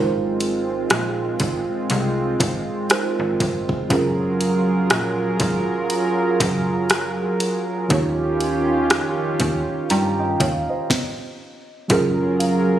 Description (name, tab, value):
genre	contemporary R&B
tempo	60 BPM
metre	4/4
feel	swing 58% on 16ths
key	Ab mixolydian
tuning	A4 = 439 Hz
part	muted felt-like synth keys	accompaniment	0.0-12.8 s	Eb3 to Bb5	-24 LUFS	right 2 dB	chorus
part	warm analog pad	sustained chords	0.0-12.8 s	Eb3 to Bb4	-22 LUFS	right 2 dB	chorus
part	slap-like FM bass	bass	0.0-12.8 s	Gb1 to G2	-26 LUFS	equal	none
part	smooth R&B drum kit	drums	0.4-12.7 s	hi-hat, kick drum, rim click, snare drum	-20 LUFS	equal	none
part	soft synth bell	texture	12.4-12.8 s	F5	-28 LUFS	left 1 dB	chorus
room	light reverb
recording	recorded on a phone in the room, studio reverb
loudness	-18 LUFS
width	side -11 dB against mid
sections	0.0-11.9 A section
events	stop 10.9-11.9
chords	0.0 Ab69; 3.9 Gbmaj9; 7.9 Eb9; 11.9 Gbmaj9